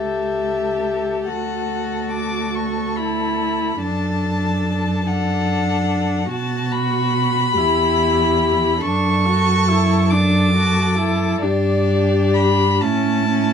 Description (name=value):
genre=classical, slow romantic movement for string quartet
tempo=47 BPM (dotted quarters)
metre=6/8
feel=uneven beats, rubato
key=D major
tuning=A4 = 440 Hz
part: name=warm violin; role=melody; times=0.0-13.5 s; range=D5 to D6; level=-22 LUFS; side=left 2 dB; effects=none
part: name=dark violin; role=second line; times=0.0-13.5 s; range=E4 to A4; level=-24 LUFS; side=left 6 dB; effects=none
part: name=warm viola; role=accompaniment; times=0.0-13.5 s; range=C#4 to G4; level=-24 LUFS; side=right 1 dB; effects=none
part: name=dark cello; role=bass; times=0.0-13.5 s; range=C#2 to B2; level=-20 LUFS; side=right 2 dB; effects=none
room=moderate small room reverb, RT60 0.5 s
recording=none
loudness=-16 LUFS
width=side -7 dB against mid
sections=0.0-13.5 A section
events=none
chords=0.0 A7/C#; 1.3 D; 3.8 D/F#; 6.3 B5; 7.6 Em; 8.8 D/F#; 11.4 G; 12.8 A